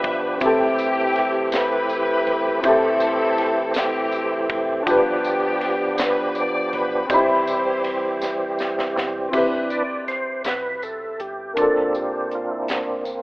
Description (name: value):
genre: slow gospel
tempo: 54 BPM (dotted quarters)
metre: 6/8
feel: straight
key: C major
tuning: A4 = 441 Hz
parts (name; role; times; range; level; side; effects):
- clear studio string section; melody; 0.0-8.6 s; B3 to E5; -24 LUFS; left 1 dB; tape echo
- warm upright piano; accompaniment; 0.0-13.2 s; G2 to B5; -23 LUFS; left 1 dB; none
- percussive tonewheel organ; sustained chords; 0.0-13.2 s; D3 to D5; -23 LUFS; right 1 dB; slow rotary speaker, overdrive, chorus vibrato
- deep dub fingered electric bass; bass; 0.0-13.2 s; F1 to C2; -42 LUFS; equal; none
- crisp fusion drum kit; drums; 0.0-13.2 s; crash cymbal, hi-hat, kick drum, ride cymbal, snare drum; -31 LUFS; equal; none
- tambourine; percussion; 0.4-13.2 s; none; -38 LUFS; left 1 dB; none
room: light reverb, small room reverb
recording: rough home demo mix, telephone sound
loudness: -19 LUFS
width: side -22 dB against mid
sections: 0.0-9.3 A section; 9.3-13.2 B section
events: drum fill 8.2-9.3; tonewheel organ solo 9.3-13.2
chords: 0.4 C6; 2.6 Am7; 4.9 G7; 7.1 Cmaj7; 11.6 Bbmaj7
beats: | 0.42 1.53 | 2.64 3.76 | 4.87 5.99 | 7.10 8.22 | 9.33 10.45 | 11.57 12.68